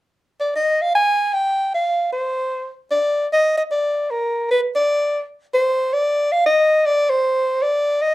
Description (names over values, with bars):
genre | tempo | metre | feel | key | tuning
jazz | 153 BPM | 3/4 | swing 64% on 8ths | unclear | A4 = 440 Hz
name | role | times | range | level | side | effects
breathy soprano saxophone | solo | 0.4-8.1 s | Bb4 to Ab5 | -16 LUFS | equal | none
room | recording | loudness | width
moderate club reverb, RT60 0.5 s | none | -17 LUFS | side -17 dB against mid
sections
0.9-3.3 A section; 3.3-8.1 B section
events
none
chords
none